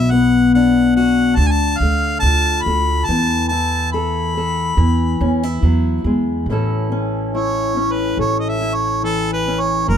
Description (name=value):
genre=acoustic folk duo or small band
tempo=71 BPM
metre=4/4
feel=straight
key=A major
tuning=A4 = 438 Hz
part: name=warm harmonica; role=melody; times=0.0-10.0 s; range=A4 to B5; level=-20 LUFS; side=equal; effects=none
part: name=fingerpicked steel-string acoustic guitar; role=accompaniment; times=0.0-10.0 s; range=F#2 to A4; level=-18 LUFS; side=left 3 dB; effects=none
part: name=upright bass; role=bass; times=0.0-10.0 s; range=F#1 to E2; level=-19 LUFS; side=right 1 dB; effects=none
room=moderate small room reverb, RT60 0.6 s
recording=none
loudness=-15 LUFS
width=side -8 dB against mid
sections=0.0-6.5 A section; 6.5-10.0 B section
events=harmonica solo 6.5-10.0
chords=0.0 Bm; 1.4 Dm; 3.1 Esus4; 4.8 E; 6.5 A